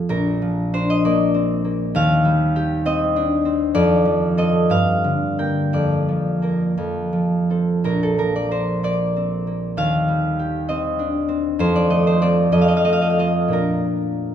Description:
classical, solo harp piece; 55-68 BPM (dotted quarters); 6/8; rubato; Bb major; A4 = 440 Hz
concert harp; solo; 0.0-14.3 s; Bb1 to G5; -17 LUFS; equal
wet recital hall reverb, RT60 1.9 s; minimal, uncompressed stereo recording; -17 LUFS; side -9 dB against mid
0.1-14.3 A section
0.1 Bb; 2.0 Cm/Eb; 3.8 F; 4.7 Gm; 5.7 Bb/F; 6.8 F; 7.8 Bb; 9.8 Cm/Eb; 11.6 F; 13.5 Bb

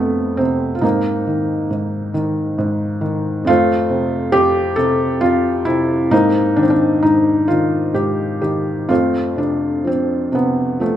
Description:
classical, lyrical solo piano; 45 BPM (dotted quarters); 6/8; uneven beats, rubato; A4 = 440 Hz
felt-muted upright piano; solo; 0.0-11.0 s; F2 to A4; -15 LUFS; equal
light reverb; minimal, uncompressed stereo recording; -15 LUFS; side -11 dB against mid
0.0-11.0 A section
0.0 F; 0.8 Abadd9; 3.5 F; 6.1 Abadd9; 8.9 F

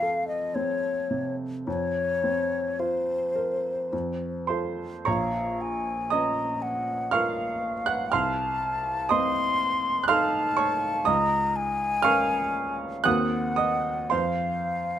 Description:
classical, romantic duo for flute and grand piano; 51-62 BPM; 3/4; rubato; Bb minor; A4 = 437 Hz
mellow hollow concert flute; melody; 0.0-15.0 s; C5 to C6; -27 LUFS; left 2 dB
clear grand piano; accompaniment; 0.0-15.0 s; Bb1 to Gb6; -26 LUFS; right 3 dB
light reverb; -24 LUFS; side -10 dB against mid
0.0-5.1 A section; 5.1-15.0 B section
0.0 F; 1.7 Fsus4; 3.9 F; 5.1 Bbm; 8.1 F7/C; 11.1 Bbm/Db; 13.1 Cm7b5/Eb; 14.1 F5

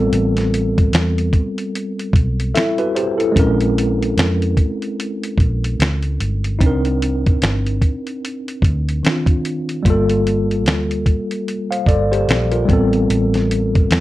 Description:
lo-fi hip hop; 74 BPM; 4/4; swing 59% on 16ths; A4 = 445 Hz
tine electric piano; accompaniment; 0.0-14.0 s; Eb3 to F5; -19 LUFS; left 1 dB; overdrive, fast stereo tremolo, cassette tape, plate reverb
vintage muted fingered electric bass; bass; 0.0-14.0 s; G1 to F2; -19 LUFS; equal
dusty soul sampler-style drum kit; drums; 0.1-14.0 s; finger snaps, hi-hat, kick drum, snare drum; -17 LUFS; equal
moderate studio reverb, RT60 0.7 s; cassette tape; -15 LUFS; side -16 dB against mid
0.0-14.0 A section
tine electric piano fill 2.1-3.4
0.0 Am9; 3.4 Bbm9; 6.6 Cm9; 9.8 Gm9; 12.7 Am9

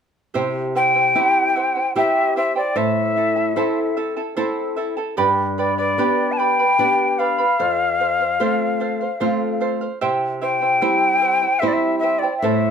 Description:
andean folk, Andean ensemble; 74 BPM; 3/4; straight; A4 = 439 Hz
charango; accompaniment; 0.3-12.7 s; E4 to B5; -23 LUFS; right 5 dB
flamenco guitar; accompaniment; 0.4-12.7 s; F2 to A4; -23 LUFS; equal
quena; melody; 0.8-12.7 s; D5 to A5; -18 LUFS; left 3 dB
moderate studio reverb, RT60 0.5 s; -17 LUFS; side -7 dB against mid
0.3-12.7 A section
0.3 C; 2.8 Am; 5.2 G; 7.6 F; 10.0 C

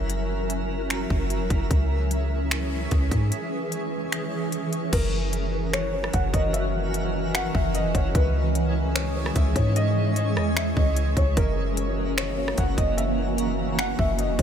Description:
hip hop, atmospheric cloud-rap; 149 BPM; 4/4; half-time; A4 = 440 Hz
granular cloud pad; sustained chords; 0.0-14.4 s; E3 to E5; -28 LUFS; right 2 dB; built-in reverb, sidechain pumping
soft 808-style bass; bass; 0.0-14.4 s; E1 to G#2; -26 LUFS; equal
twinkling granular texture; texture; 0.0-14.4 s; F#3 to C#5; -35 LUFS; right 1 dB; built-in reverb, lush chorus
trap drum kit; drums; 0.1-14.4 s; crash cymbal, finger snaps, hi-hat, kick drum, rim click; -27 LUFS; equal
felt-muted upright piano; melody; 4.9-14.4 s; A#4 to F#5; -29 LUFS; left 1 dB; wide subtle chorus, low-pass filter, diffuse ambient delay
moderate huge ambient reverb, RT60 5.9 s; dreamy mix soaked in reverb; -22 LUFS; side -8 dB against mid
0.0-4.9 A section; 4.9-14.4 B section
break 3.3-4.9
0.0 F#7; 1.7 C#m; 4.9 F#7; 8.1 C#m; 11.4 F#7

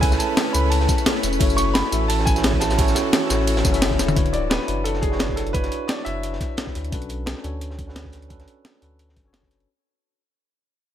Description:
liquid drum and bass; 174 BPM; 4/4; swing 54% on 16ths; D major; A4 = 441 Hz
clear grand piano; melody; 0.0-6.7 s; G#4 to C#6; -28 LUFS; equal; dub echo
bright tine electric piano; accompaniment; 0.0-9.7 s; C#4 to E5; -26 LUFS; moving between left 8 dB and right 8 dB; auto-pan, ping-pong delay
shimmering ambient pad; sustained chords; 0.0-4.1 s; E3 to B5; -29 LUFS; equal; chorus, built-in reverb
saturated sub bass; bass; 0.0-9.7 s; D1 to D2; -25 LUFS; equal
breakbeat sampler-style drum kit; drums; 0.0-9.7 s; hi-hat, ride cymbal, snare drum, tambourine, toms; -24 LUFS; equal
crunchy breakbeat drum kit; drums; 0.0-9.6 s; hi-hat, snare drum; -32 LUFS; equal; high-pass filter on hats, high-pass filter on snare, high-pass filter on room
electronic kick drum; drums; 0.0-9.5 s; -24 LUFS; equal
light reverb, digital ambience; -18 LUFS; side -10 dB against mid
0.0-4.2 A section; 4.2-9.7 B section
drop 0.0-4.2; drum fill 4.0; fade-out 4.2-9.7
0.0 Amaj9; 1.4 F#m7; 4.2 Dmaj13; 6.9 Bm9

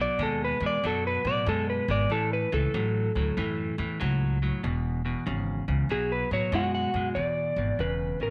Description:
electric blues shuffle; 95 BPM; 4/4; swing 66% on 8ths; E mixolydian; A4 = 438 Hz
electric slide guitar; melody; 0.0-8.3 s; F#4 to F#5; -31 LUFS; equal
clean electric guitar; riff; 0.0-8.3 s; E2 to G#3; -34 LUFS; equal
upright bass; bass; 0.0-8.3 s; E1 to A2; -32 LUFS; equal
light reverb, studio ambience; -28 LUFS; mono
0.0-7.2 A section; 7.2-8.3 B section
electric slide guitar solo 0.0-7.2
0.0 B7; 2.1 A; 4.6 E; 5.9 B5; 7.2 E7

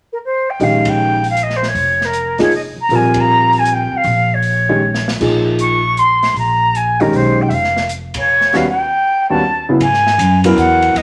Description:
modal jazz; 156 BPM; 3/4; swing 66% on 8ths; Bb dorian; A4 = 440 Hz
silver concert flute; melody; 0.1-11.0 s; Bb4 to Db6; -16 LUFS; equal
dark concert grand piano; accompaniment; 0.6-10.9 s; Eb2 to Bb4; -18 LUFS; equal
upright bass; bass; 0.6-11.0 s; F1 to G#2; -22 LUFS; equal
open jazz drum kit; drums; 0.6-11.0 s; crash cymbal, hi-hat, kick drum, ride cymbal, snare drum; -29 LUFS; equal
moderate studio reverb, RT60 0.8 s; -14 LUFS; mono
0.6-9.8 A section; 9.8-11.0 B section
band accent 0.8, 3.1, 8.1; drum fill 4.8-5.2
0.0 N.C.; 0.6 Bbm9; 8.7 Eb7alt; 9.8 G#7sus2

